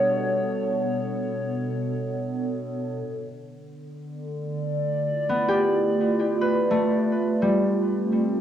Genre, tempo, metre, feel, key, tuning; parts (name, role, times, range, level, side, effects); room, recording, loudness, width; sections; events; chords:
ambient; free time; A4 = 443 Hz
warbly tape-like pad; sustained chords; 0.0-8.4 s; B2 to D5; -25 LUFS; right 1 dB; chorus, built-in reverb, phaser, cassette tape
analog drone; drone; 0.0-3.2 s; G3 to D4; -36 LUFS; left 1 dB; chorus, cassette tape
concert harp; arpeggios; 5.3-8.4 s; G3 to B4; -23 LUFS; left 1 dB; cassette tape, tape echo
wet studio ambience, RT60 0.5 s; home recording on cassette; -22 LUFS; side -10 dB against mid
0.0-3.1 A section; 3.1-8.4 B section
filter sweep on ambient pad 3.1-8.4
0.0 Bm7; 3.1 Dmadd9; 6.9 F